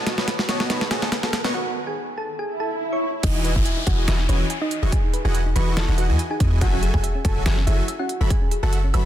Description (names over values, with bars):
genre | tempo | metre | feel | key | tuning
future bass | 142 BPM | 4/4 | swing 54% on 16ths, half-time | E major | A4 = 438 Hz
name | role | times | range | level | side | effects
shimmering ambient pad | sustained chords | 0.4-1.5 s | D#3 to A4 | -38 LUFS | left 1 dB | chorus, built-in reverb, sidechain pumping
supersaw chords | riff | 0.0-9.1 s | E3 to C#6 | -28 LUFS | equal | sidechain pumping
riser, swell and downlifter | sound effects | 0.0-6.6 s | none | -30 LUFS | equal | none
thumb-piano-like synth pluck | arpeggios | 0.1-8.9 s | C#4 to G#5 | -34 LUFS | left 1 dB | chorus, sidechain pumping, tape echo
dubstep drum kit | drums | 0.1-9.0 s | crash cymbal, hi-hat, snare drum, woodblock | -26 LUFS | equal | none
thumb-piano-like synth pluck | melody | 0.2-9.1 s | C#4 to C#6 | -30 LUFS | equal | chorus, sidechain pumping, tape echo
warm 808-style bass | bass | 3.2-9.1 s | E1 to E2 | -21 LUFS | equal | sidechain pumping
electronic kick drum | drums | 3.2-8.4 s | none | -21 LUFS | equal | none
room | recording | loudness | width
little or no reverb | dense, heavily limited modern master | -19 LUFS | side -12 dB against mid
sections
0.0-3.2 A section; 3.2-9.1 B section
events
build-up 0.0-3.2; drum fill 0.0-1.5; break 1.5-3.2; swell 2.5-3.2; drop 3.2-9.1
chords
0.0 B7; 3.2 Emaj7; 6.6 F#m9